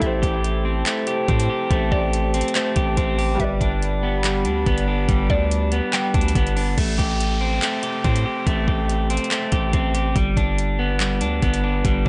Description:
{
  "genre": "hip hop, trap",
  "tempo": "142 BPM",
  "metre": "4/4",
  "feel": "half-time",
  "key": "A minor",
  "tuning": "A4 = 437 Hz",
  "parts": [
    { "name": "hollow square pluck", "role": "second line", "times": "0.0-6.3 s", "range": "C5 to G5", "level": "-32 LUFS", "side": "equal", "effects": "chorus, tape echo" },
    { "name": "felt-muted upright piano", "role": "accompaniment", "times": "0.0-6.8 s", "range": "G3 to D5", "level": "-32 LUFS", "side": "equal", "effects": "low-pass filter" },
    { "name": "dark analog pad", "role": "sustained chords", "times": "0.0-6.7 s", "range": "G4 to B5", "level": "-32 LUFS", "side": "equal", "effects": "chorus" },
    { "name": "electric guitar at the edge of break-up", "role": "arpeggios", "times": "0.0-12.1 s", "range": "G3 to G4", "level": "-26 LUFS", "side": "equal", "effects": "spring reverb, low-pass filter, tape echo" },
    { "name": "distorted 808-style bass", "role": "bass", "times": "0.0-12.1 s", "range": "G1 to A2", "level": "-25 LUFS", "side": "equal", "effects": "distortion" },
    { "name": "trap drum kit", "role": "drums", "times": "0.0-12.1 s", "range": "crash cymbal, handclaps, hi-hat, kick drum", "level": "-26 LUFS", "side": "equal", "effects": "none" },
    { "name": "downlifter", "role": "sound effects", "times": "6.8-10.2 s", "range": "none", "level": "-36 LUFS", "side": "equal", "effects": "none" }
  ],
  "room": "light reverb",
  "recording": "nothing above 10.3 kHz",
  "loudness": "-21 LUFS",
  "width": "mono",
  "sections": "0.0-6.8 A section; 6.8-12.1 B section",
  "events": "none",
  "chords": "0.0 Am7; 3.4 G; 6.8 Am7; 10.2 G"
}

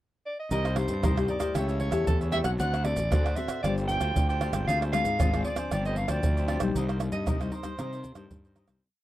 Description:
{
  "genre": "samba and choro",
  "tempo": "116 BPM",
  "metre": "4/4",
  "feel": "straight",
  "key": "C minor",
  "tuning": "A4 = 440 Hz",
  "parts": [
    { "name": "warm soprano saxophone", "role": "melody", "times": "0.3-8.3 s", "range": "A4 to G5", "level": "-32 LUFS", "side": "right 1 dB", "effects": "none" },
    { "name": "cavaquinho", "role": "accompaniment", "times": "0.5-8.8 s", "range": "D4 to F#5", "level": "-38 LUFS", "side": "equal", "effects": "none" },
    { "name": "nylon-string guitar", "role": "accompaniment", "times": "0.5-8.8 s", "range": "G2 to C5", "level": "-33 LUFS", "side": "left 4 dB", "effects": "none" },
    { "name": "fuzz fingered electric bass", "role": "bass", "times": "0.5-8.8 s", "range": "G1 to C3", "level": "-30 LUFS", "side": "equal", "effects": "overdrive" },
    { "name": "maracas, surdo, pandeiro and tamborim", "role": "percussion", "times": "0.5-8.8 s", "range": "none", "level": "-30 LUFS", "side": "right 1 dB", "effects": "none" }
  ],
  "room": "light reverb",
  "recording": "dry, close 1970s-style studio recording",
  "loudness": "-25 LUFS",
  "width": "side -14 dB against mid",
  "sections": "0.0-0.5 pickup bar; 0.5-8.8 A section",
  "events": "fade-out 6.7-8.8",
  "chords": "0.0 N.C.; 0.5 Cm7; 1.6 A7/C#; 2.6 D7; 3.6 G7sus4; 4.7 Dm7b5; 5.7 G7sus4; 6.7 Cm7"
}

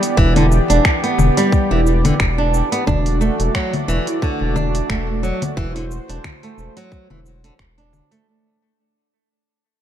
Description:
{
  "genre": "organic downtempo",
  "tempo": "89 BPM",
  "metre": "4/4",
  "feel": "swing 56% on 16ths",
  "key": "unclear",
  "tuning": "A4 = 440 Hz",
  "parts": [
    { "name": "warm analog pad", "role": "sustained chords", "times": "0.0-8.2 s", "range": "E3 to D5", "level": "-23 LUFS", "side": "right 1 dB", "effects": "chorus, tremolo, sidechain pumping" },
    { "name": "afro-pop drum kit", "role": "drums", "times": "0.0-8.2 s", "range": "congas, finger snaps, hi-hat, shaker", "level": "-22 LUFS", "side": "left 3 dB", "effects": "none" },
    { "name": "flamenco guitar", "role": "arpeggios", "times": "0.2-8.3 s", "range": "D3 to D4", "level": "-20 LUFS", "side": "right 2 dB", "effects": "ping-pong delay" },
    { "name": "round analog bass", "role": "bass", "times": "0.2-8.0 s", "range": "E1", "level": "-18 LUFS", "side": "equal", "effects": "none" },
    { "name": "electronic kick drum", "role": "drums", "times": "0.2-7.7 s", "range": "none", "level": "-18 LUFS", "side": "equal", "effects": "overdrive" }
  ],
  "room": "light reverb, digital ambience",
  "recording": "dark, warm production",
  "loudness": "-15 LUFS",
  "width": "side -10 dB against mid",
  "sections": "0.0-8.3 A section",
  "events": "fade-out 1.1-8.3",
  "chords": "0.0 Em7; 2.9 Dadd9/E"
}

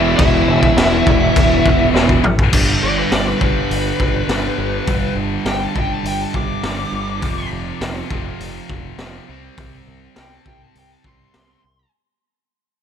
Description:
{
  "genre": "hard rock",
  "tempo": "102 BPM",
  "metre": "4/4",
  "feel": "straight",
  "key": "unclear",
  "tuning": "A4 = 441 Hz",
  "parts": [
    { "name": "bluesy overdriven lead guitar", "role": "melody", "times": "0.0-11.9 s", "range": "B4 to D6", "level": "-22 LUFS", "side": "left 2 dB", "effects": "distortion, analog delay" },
    { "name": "biting lead guitar", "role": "second line", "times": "0.0-1.9 s", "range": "E4", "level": "-23 LUFS", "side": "equal", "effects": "overdrive, analog delay" },
    { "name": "overdriven tonewheel organ", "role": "sustained chords", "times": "0.0-2.5 s", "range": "E3 to E4", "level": "-31 LUFS", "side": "left 1 dB", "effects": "none" },
    { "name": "crunchy overdriven guitar", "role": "riff", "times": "0.0-11.6 s", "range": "E2 to C4", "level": "-23 LUFS", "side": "right 15 dB", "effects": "none" },
    { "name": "crunchy overdriven guitar", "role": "riff", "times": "0.0-2.2 s", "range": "E2 to E3", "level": "-22 LUFS", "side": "equal", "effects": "none" },
    { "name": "scooped high-gain guitar", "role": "riff", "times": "0.0-11.6 s", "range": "E2 to C4", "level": "-24 LUFS", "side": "left 12 dB", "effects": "distortion" },
    { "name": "growling fingered electric bass", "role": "bass", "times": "0.0-11.8 s", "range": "E1 to C2", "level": "-23 LUFS", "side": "equal", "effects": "overdrive" },
    { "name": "raw garage drum kit", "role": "drums", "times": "0.2-11.5 s", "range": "crash cymbal, hi-hat, kick drum, snare drum, toms", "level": "-18 LUFS", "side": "equal", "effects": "none" }
  ],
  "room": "light reverb, small room ambience",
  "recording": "none",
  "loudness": "-14 LUFS",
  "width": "side -8 dB against mid",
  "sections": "0.0-2.5 A section; 2.5-11.9 B section",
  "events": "drum fill 1.9-2.5; fade-out 2.5-11.9; lead electric guitar solo 2.5-11.9",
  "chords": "0.0 E5; 2.5 G; 7.2 F5; 9.3 C5"
}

